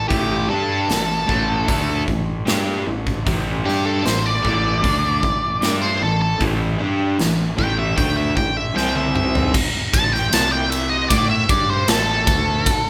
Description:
blues rock power trio and southern rock; 76 BPM; 4/4; straight; A minor; A4 = 440 Hz
octave-fuzz lead guitar; melody; 0.0-12.9 s; G4 to A5; -23 LUFS; equal; distortion
fuzz fingered electric bass; bass; 0.0-12.6 s; A1 to A2; -27 LUFS; equal; overdrive
crunchy overdriven guitar; riff; 0.1-9.5 s; A2 to G4; -24 LUFS; equal
big rock drum kit; drums; 0.1-12.9 s; crash cymbal, hi-hat, kick drum, ride cymbal, snare drum, toms; -24 LUFS; equal
moderate large studio reverb, RT60 0.9 s; band playing live in one room, faint mains hum; -19 LUFS; mono
0.0-9.5 A section; 9.5-12.9 B section
drum fill 8.8-9.5; lead electric guitar solo 9.5-12.9
0.0 A5; 8.8 C5; 9.5 Gsus2/A; 10.3 Cm6; 11.1 Asus4

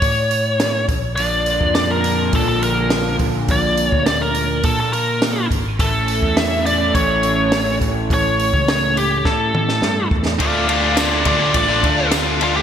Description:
indie rock; 104 BPM; 4/4; straight; A4 = 441 Hz
biting lead guitar; melody; 0.0-12.6 s; F4 to F5; -19 LUFS; left 1 dB; overdrive, ping-pong delay
overdriven picked electric bass; bass; 0.0-12.6 s; G#1 to Bb2; -23 LUFS; equal
compact cocktail drum kit; drums; 0.0-12.5 s; hi-hat, kick drum, ride cymbal, snare drum, toms; -21 LUFS; equal; gated reverb
biting overdriven guitar; riff; 1.2-12.6 s; A2 to F4; -24 LUFS; right 7 dB; analog chorus
overdriven electric guitar; riff; 1.2-12.6 s; A2 to F4; -24 LUFS; left 8 dB; wide subtle chorus
tambourine; percussion; 11.0-12.3 s; -34 LUFS; right 6 dB
moderate lush hall reverb, RT60 2.8 s; bright 1980s-style digital production; -15 LUFS; side -8 dB against mid
0.0-10.4 A section; 10.4-12.6 B section
drum fill 9.2-10.4; lead electric guitar solo 10.4-12.6
0.0 N.C.; 0.9 Bb; 5.8 A; 10.4 Dm

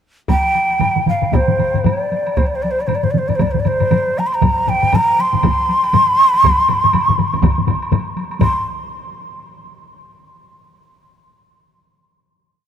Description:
japanese traditional, taiko drum ensemble; 118 BPM; 4/4; swing 60% on 16ths, uneven beats; C suspended pentatonic; A4 = 439 Hz
breathy hollow shakuhachi; melody; 0.3-8.6 s; C5 to C6; -16 LUFS; right 1 dB
taiko ensemble; percussion; 0.3-8.6 s; -25 LUFS; left 2 dB
taiko ensemble; percussion; 0.3-8.6 s; -20 LUFS; right 1 dB
woodblock; percussion; 0.3-8.6 s; -30 LUFS; right 3 dB
taiko ensemble; percussion; 0.8-8.9 s; -20 LUFS; left 5 dB
taiko ensemble; percussion; 0.8-8.9 s; -21 LUFS; right 6 dB
moderate huge ambient reverb, RT60 5.1 s; -13 LUFS; side -8 dB against mid
0.3-8.4 A section; 8.4-10.3 final note
speeding up 0.3-10.3

